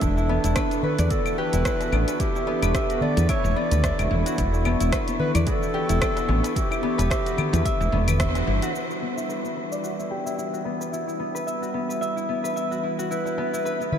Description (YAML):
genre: organic downtempo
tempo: 110 BPM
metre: 4/4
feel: swing 56% on 16ths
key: E dorian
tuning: A4 = 440 Hz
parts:
  - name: mellow clarinet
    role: melody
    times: 0.0-8.2, 13.1-14.0 s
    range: D4 to D5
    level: -30 LUFS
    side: equal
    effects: analog delay
  - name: warm analog pad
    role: sustained chords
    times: 0.0-14.0 s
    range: E3 to C#6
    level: -31 LUFS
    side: right 3 dB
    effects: chorus, vintage 12-bit sampler grit, sidechain pumping
  - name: concert harp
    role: arpeggios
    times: 0.0-14.0 s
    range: B3 to E5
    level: -27 LUFS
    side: left 2 dB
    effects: low-pass filter, analog delay
  - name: woody fretless electric bass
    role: bass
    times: 0.0-8.6 s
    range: E1 to E2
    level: -22 LUFS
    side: equal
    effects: analog chorus, sidechain pumping
  - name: deep house drum kit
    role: drums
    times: 0.0-13.9 s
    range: claves, hi-hat, rim click, shaker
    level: -32 LUFS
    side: equal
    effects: overdrive
  - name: electronic kick drum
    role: drums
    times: 0.0-8.3 s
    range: none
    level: -28 LUFS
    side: equal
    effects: overdrive
  - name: darbuka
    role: percussion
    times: 0.2-8.4, 13.3-14.0 s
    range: none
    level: -34 LUFS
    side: left 2 dB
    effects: none
room: moderate huge ambient reverb, RT60 8.1 s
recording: dreamy mix soaked in reverb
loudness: -22 LUFS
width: side -8 dB against mid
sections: 0.0-8.7 A section; 8.7-14.0 B section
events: band accent 8.2; filter sweep on harp 8.7-14.0; filter sweep on analog synth pad 8.7-14.0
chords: 0.0 Em7